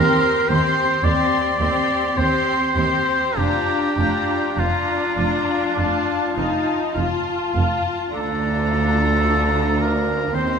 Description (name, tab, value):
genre	classical, slow romantic movement for symphony orchestra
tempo	48-57 BPM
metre	4/4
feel	rubato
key	Bb major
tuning	A4 = 440 Hz
part	dark symphonic violin section	melody	0.0-10.6 s	A5 to C6	-28 LUFS	left 4 dB	none
part	rich studio violin section	second line	0.0-10.6 s	F4 to G4	-27 LUFS	left 6 dB	none
part	warm oboe	second line	0.0-10.6 s	F4 to D5	-21 LUFS	right 1 dB	none
part	rich symphonic viola section	accompaniment	0.0-10.6 s	C4 to F4	-25 LUFS	left 1 dB	none
part	bright symphonic double bass section	bass	0.0-10.6 s	F1 to Eb2	-26 LUFS	right 2 dB	none
part	rich symphonic cello section	bass	0.0-10.6 s	D2 to F2	-25 LUFS	right 2 dB	none
room	wet scoring stage reverb, RT60 1.7 s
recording	minimal, uncompressed stereo recording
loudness	-17 LUFS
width	side -6 dB against mid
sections	0.0-10.6 A section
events	none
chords	0.0 Cm/Eb; 3.4 Bb/F; 5.8 F; 8.1 Bb/D